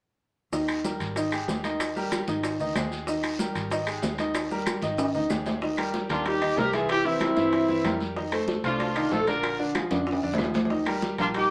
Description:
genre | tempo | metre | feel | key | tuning
latin, salsa | 189 BPM | 4/4 | straight | Eb major | A4 = 440 Hz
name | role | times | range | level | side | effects
bright baby grand piano | accompaniment | 0.5-11.4 s | D3 to Fb5 | -31 LUFS | equal | none
fingered electric bass | bass | 0.5-11.5 s | Ab1 to G2 | -39 LUFS | equal | none
bongos | percussion | 0.5-11.5 s | none | -38 LUFS | equal | none
congas | percussion | 0.5-11.5 s | none | -40 LUFS | equal | none
guiro | percussion | 0.5-11.5 s | none | -44 LUFS | equal | none
maracas | percussion | 0.5-5.6 s | none | -46 LUFS | equal | none
claves | percussion | 0.7-11.0 s | none | -42 LUFS | equal | none
timbales | percussion | 0.7-11.5 s | none | -34 LUFS | equal | none
warm horn section | melody | 6.1-11.5 s | C4 to Bb4 | -27 LUFS | equal | none
room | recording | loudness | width
wet studio reverb, RT60 0.5 s | none | -27 LUFS | mono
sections
0.5-5.6 A section; 5.6-11.5 B section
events
drum fill 5.0-5.6, 9.9-10.7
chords
0.5 Eb; 1.2 Ab5; 1.8 Eb; 2.4 Ab5; 3.1 Eb; 3.7 Ab5; 4.3 Eb; 5.0 Ab5; 5.6 Ebadd9; 6.9 C7; 8.2 F7; 9.4 Bb7; 10.7 Eb

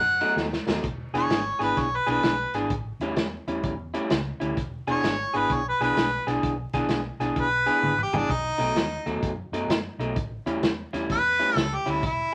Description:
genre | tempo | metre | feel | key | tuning
electric blues shuffle | 129 BPM | 4/4 | swing 66% on 8ths | E mixolydian | A4 = 440 Hz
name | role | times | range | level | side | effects
warm harmonica | melody | 0.0-12.3 s | D4 to F#5 | -27 LUFS | equal | overdrive
vintage muted fingered electric bass | bass | 0.0-12.2 s | E1 to F#2 | -37 LUFS | equal | none
electric guitar through a small old amp | riff | 0.2-12.0 s | A2 to G#4 | -30 LUFS | equal | none
vintage drum kit | drums | 0.2-12.2 s | hi-hat, kick drum, ride cymbal, snare drum, toms | -32 LUFS | equal | none
room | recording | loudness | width
light reverb | vinyl crackle | -26 LUFS | mono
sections
0.8-12.3 A section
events
drum fill 0.4-0.8, 7.8-8.3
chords
0.0 B7; 0.8 E7; 2.7 A7; 4.6 E7; 8.3 B7; 10.2 A7

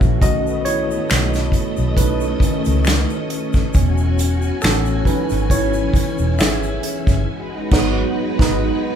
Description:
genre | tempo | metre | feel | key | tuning
R&B, neo-soul | 68 BPM | 4/4 | swing 54% on 16ths | unclear | A4 = 440 Hz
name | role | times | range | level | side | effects
tine electric piano | accompaniment | 0.0-9.0 s | D#3 to E5 | -21 LUFS | right 1 dB | medium stereo tremolo
soft string machine | sustained chords | 0.0-9.0 s | E3 to G#5 | -25 LUFS | equal | ensemble chorus
vintage muted fingered electric bass | bass | 0.0-8.7 s | E1 to C#2 | -20 LUFS | equal | none
unplugged drum kit | drums | 0.0-8.6 s | crash cymbal, finger snaps, hi-hat, kick drum, snare drum | -18 LUFS | equal | none
egg shaker and finger snaps | percussion | 0.0-7.3 s | none | -34 LUFS | left 4 dB | none
room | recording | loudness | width
light reverb | band playing live in one room | -16 LUFS | side -8 dB against mid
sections
0.0-9.0 A section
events
tine electric piano solo 0.0-9.0; band accent 7.3-9.0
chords
0.2 B9; 3.7 E69; 7.3 G#m7

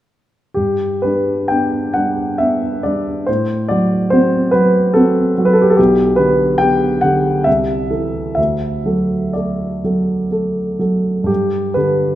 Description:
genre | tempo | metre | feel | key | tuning
classical, romantic nocturne for solo piano | 60-74 BPM | 3/4 | rubato | G major | A4 = 441 Hz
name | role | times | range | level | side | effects
warm baby grand piano | solo | 0.5-12.2 s | B1 to G5 | -13 LUFS | equal | none
room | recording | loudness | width
wet recital hall reverb, RT60 1.6 s | minimal, uncompressed stereo recording | -13 LUFS | side -13 dB against mid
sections
0.6-12.2 A section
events
none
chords
0.6 G; 3.3 F#dim/A; 5.8 G/B; 7.5 Am/C; 8.4 D; 11.3 G

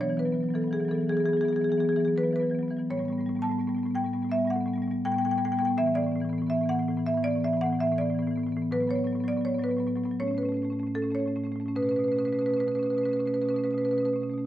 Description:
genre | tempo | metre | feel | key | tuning
classical, contemporary piece for solo marimba | 72-85 BPM | 4/4 | rubato | unclear | A4 = 439 Hz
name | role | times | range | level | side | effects
marimba with medium hard mallets | solo | 0.0-14.5 s | A2 to A5 | -25 LUFS | equal | none
room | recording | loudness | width
moderate stone room reverb, RT60 1.4 s | none | -25 LUFS | side -12 dB against mid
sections
0.0-14.5 A section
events
none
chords
0.0 Eadd9; 2.9 Asus2; 5.8 B7sus4/A; 8.7 Asus2; 10.2 A; 11.8 Bsus2

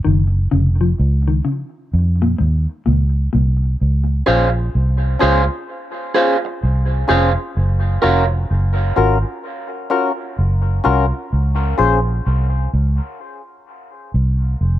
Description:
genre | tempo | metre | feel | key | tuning
reggae | 64 BPM | 4/4 | swing 63% on 16ths | Db major | A4 = 438 Hz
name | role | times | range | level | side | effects
mellow electric guitar | arpeggios | 0.0-3.5 s | Ab2 to F3 | -21 LUFS | left 3 dB | dub echo
vintage muted fingered electric bass | bass | 0.1-14.8 s | F1 to F2 | -16 LUFS | equal | none
electric guitar through a small old amp | accompaniment | 4.3-8.3 s | Ab4 to F5 | -21 LUFS | right 6 dB | dub echo
percussive organ stab | stabs | 4.3-12.0 s | Db4 to C5 | -20 LUFS | left 4 dB | chorus, dub echo
room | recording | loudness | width
light reverb, digital ambience | none | -15 LUFS | side -13 dB against mid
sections
0.0-3.8 A section; 3.8-14.8 B section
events
break 0.0-3.8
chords
0.0 Gbmaj7; 3.8 Dbmaj7; 7.6 Gbmaj7; 11.3 Dbmaj7

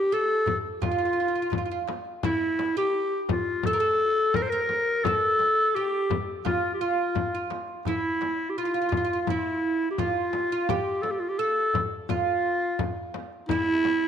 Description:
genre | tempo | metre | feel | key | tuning
Turkish makam ensemble | 85 BPM | 4/4 | straight | F makam rast | A4 = 440 Hz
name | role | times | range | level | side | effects
growling clarinet | melody | 0.0-14.1 s | E4 to C5 | -25 LUFS | left 1 dB | slapback echo
oud | second line | 0.0-14.1 s | E4 to Bb4 | -32 LUFS | right 9 dB | none
darbuka | percussion | 0.5-14.0 s | none | -37 LUFS | right 4 dB | none
frame drum | percussion | 0.5-14.0 s | none | -32 LUFS | left 8 dB | none
room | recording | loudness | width
moderate plate reverb, RT60 2.6 s | 1960s-style stereo with parts hard left and right | -23 LUFS | side -8 dB against mid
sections
0.0-14.1 A section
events
none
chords
none

